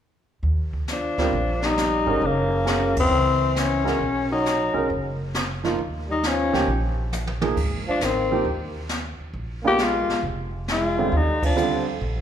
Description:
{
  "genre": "jazz, small-group swing and bop",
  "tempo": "135 BPM",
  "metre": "4/4",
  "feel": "swing 68% on 8ths",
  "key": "unclear",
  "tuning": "A4 = 436 Hz",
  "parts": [
    { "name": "upright bass", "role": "bass", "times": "0.4-12.2 s", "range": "F1 to Eb2", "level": "-27 LUFS", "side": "equal", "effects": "none" },
    { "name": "jazz brush drum kit", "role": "drums", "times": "0.4-12.2 s", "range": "brushed snare drum, hi-hat, kick drum, ride cymbal, snare drum, toms", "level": "-29 LUFS", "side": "equal", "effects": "none" },
    { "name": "growling tenor saxophone", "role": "melody", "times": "0.9-11.9 s", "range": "Bb3 to G4", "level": "-23 LUFS", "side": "left 4 dB", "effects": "none" },
    { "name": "growling trombone", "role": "second line", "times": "0.9-11.8 s", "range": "Db3 to Bb3", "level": "-29 LUFS", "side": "right 2 dB", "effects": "none" },
    { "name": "warm grand piano", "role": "accompaniment", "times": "1.2-11.8 s", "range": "D3 to Bb4", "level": "-27 LUFS", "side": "right 4 dB", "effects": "none" }
  ],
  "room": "wet recital hall reverb, RT60 1.6 s",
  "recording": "recorded in a church or concert hall",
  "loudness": "-20 LUFS",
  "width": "side -9 dB against mid",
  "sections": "0.4-12.2 A section",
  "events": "band accent 2.9, 11.4; drum fill 7.1-7.6",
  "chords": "0.4 Ebmaj9; 2.2 Gb9; 4.0 Bmaj7; 5.8 Eb7sus2; 7.6 Ab; 9.3 Bb7; 11.1 Ebmaj9"
}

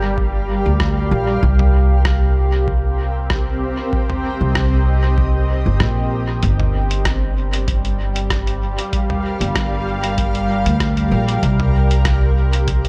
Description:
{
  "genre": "ambient dub",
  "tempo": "96 BPM",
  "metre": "4/4",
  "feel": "swing 54% on 16ths",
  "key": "C minor",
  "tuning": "A4 = 440 Hz",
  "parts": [
    { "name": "granular cloud pad", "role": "sustained chords", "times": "0.0-12.9 s", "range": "G3 to F5", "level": "-24 LUFS", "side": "equal", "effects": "built-in reverb, vintage 12-bit sampler grit" },
    { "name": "upright bass", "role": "bass", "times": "0.0-12.9 s", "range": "G1 to D2", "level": "-19 LUFS", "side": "equal", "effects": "none" },
    { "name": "electronic kick drum", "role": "drums", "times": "0.2-12.8 s", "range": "none", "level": "-25 LUFS", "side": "equal", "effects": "overdrive" },
    { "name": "lo-fi sampler-style drum kit", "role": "drums", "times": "0.8-12.9 s", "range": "hi-hat, rim click, toms", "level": "-28 LUFS", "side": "equal", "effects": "dub echo" }
  ],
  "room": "digital ambience",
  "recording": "echo-heavy mix",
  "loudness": "-18 LUFS",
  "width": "mono",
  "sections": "0.0-12.9 A section",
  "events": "none",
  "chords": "0.0 Gm7; 1.4 Cm7; 6.4 Gm7; 11.4 Cm7"
}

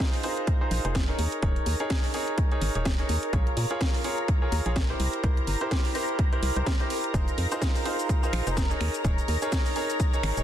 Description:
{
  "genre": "piano house",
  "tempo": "126 BPM",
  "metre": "4/4",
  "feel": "swing 58% on 16ths",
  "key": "F minor",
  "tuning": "A4 = 439 Hz",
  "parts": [
    { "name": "analog string pad", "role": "sustained chords", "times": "0.0-10.4 s", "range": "Bb4 to Bb5", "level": "-34 LUFS", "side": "equal", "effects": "ensemble chorus, phaser, sidechain pumping" },
    { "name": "clear concert grand piano", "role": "riff", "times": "0.0-10.4 s", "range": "Eb4 to Db5", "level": "-31 LUFS", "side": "right 1 dB", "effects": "sidechain pumping, tape echo" },
    { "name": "electronic kick drum", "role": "drums", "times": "0.0-10.1 s", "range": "none", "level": "-26 LUFS", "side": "equal", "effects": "overdrive" },
    { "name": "house drum kit", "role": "drums", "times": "0.0-10.4 s", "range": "finger snaps, hi-hat, shaker, snare drum", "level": "-34 LUFS", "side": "equal", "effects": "overdrive" },
    { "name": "organ-like FM bass", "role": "bass", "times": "0.7-10.4 s", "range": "Eb1 to Bb2", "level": "-28 LUFS", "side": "equal", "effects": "sidechain pumping" }
  ],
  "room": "little or no reverb",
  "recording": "dense, heavily limited modern master",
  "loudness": "-24 LUFS",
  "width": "side -10 dB against mid",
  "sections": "0.0-10.4 A section",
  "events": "none",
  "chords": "0.0 Fm7; 1.2 Eb7sus4; 3.3 Bbm7; 5.0 C7; 7.1 Fm7; 8.8 Eb7sus4"
}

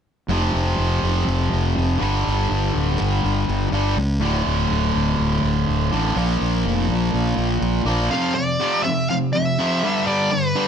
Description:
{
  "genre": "rock",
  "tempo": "123 BPM",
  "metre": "4/4",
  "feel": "straight",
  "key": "unclear",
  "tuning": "A4 = 441 Hz",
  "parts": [
    { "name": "distorted electric guitar", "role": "riff", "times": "0.3-10.7 s", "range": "D2 to Bb3", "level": "-20 LUFS", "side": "equal", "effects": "overdrive" },
    { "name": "fuzz fingered electric bass", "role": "bass", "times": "0.3-8.1 s", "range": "D1 to C#2", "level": "-21 LUFS", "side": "equal", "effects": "overdrive" },
    { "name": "dark smooth lead guitar", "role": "melody", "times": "8.1-10.7 s", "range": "B4 to F5", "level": "-22 LUFS", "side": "equal", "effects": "overdrive" }
  ],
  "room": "light reverb",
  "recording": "none",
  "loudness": "-18 LUFS",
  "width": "side -8 dB against mid",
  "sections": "0.3-8.1 A section; 8.1-10.7 B section",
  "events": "none",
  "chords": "0.3 F5; 2.0 G5; 4.2 D5; 6.2 Bb5; 8.1 F5; 9.8 G"
}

